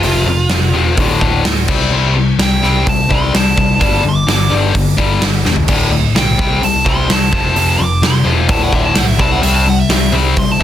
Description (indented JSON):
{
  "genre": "hard rock",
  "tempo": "128 BPM",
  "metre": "4/4",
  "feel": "straight",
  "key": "unclear",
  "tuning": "A4 = 440 Hz",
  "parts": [
    { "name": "dark smooth lead guitar", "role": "melody", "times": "0.0-10.6 s", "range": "F4 to D6", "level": "-18 LUFS", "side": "right 2 dB", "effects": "overdrive" },
    { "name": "overdriven electric guitar", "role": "riff", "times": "0.0-10.6 s", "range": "D2 to C4", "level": "-15 LUFS", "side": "left 5 dB", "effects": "none" },
    { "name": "overdriven picked electric bass", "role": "bass", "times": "0.0-10.6 s", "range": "D1 to C2", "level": "-17 LUFS", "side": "right 1 dB", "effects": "none" },
    { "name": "huge arena drum kit", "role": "drums", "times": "0.0-10.6 s", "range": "crash cymbal, hi-hat, kick drum, snare drum, toms", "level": "-16 LUFS", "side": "right 1 dB", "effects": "none" }
  ],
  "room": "light reverb",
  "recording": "dense, heavily limited modern master",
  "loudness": "-11 LUFS",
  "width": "side -11 dB against mid",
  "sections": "0.0-10.6 A section",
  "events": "lead electric guitar solo 0.0-10.6; drum fill 5.5",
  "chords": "0.0 F5; 1.0 D5; 1.7 C5; 3.8 G5; 5.7 D5; 6.4 C5; 7.3 F; 8.5 D5; 9.2 C5"
}